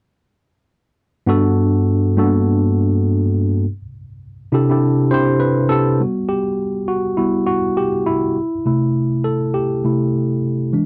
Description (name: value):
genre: soul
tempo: 102 BPM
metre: 4/4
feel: swing 58% on 16ths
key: G major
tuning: A4 = 441 Hz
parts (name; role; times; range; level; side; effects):
- tine electric piano; solo; 1.3-10.9 s; G2 to C5; -18 LUFS; equal; none
room: light reverb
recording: dry, close 1970s-style studio recording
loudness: -18 LUFS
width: mono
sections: 1.3-6.0 A section; 6.0-10.9 B section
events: tine electric piano solo 6.0-10.9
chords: 1.3 Gmaj9; 3.6 C6; 6.0 Gmaj7; 8.4 C6